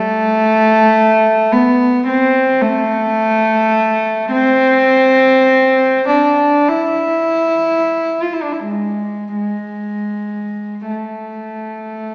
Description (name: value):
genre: classical, free, expressive piece for unaccompanied cello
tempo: 39-55 BPM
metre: 4/4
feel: rubato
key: unclear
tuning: A4 = 440 Hz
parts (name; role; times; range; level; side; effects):
- warm cello; solo; 0.0-12.1 s; G#3 to F4; -12 LUFS; equal; none
room: wet recital hall reverb, RT60 1.8 s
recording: heard from further back in the room, small speaker sound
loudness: -11 LUFS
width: side -30 dB against mid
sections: 0.0-12.1 A section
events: none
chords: none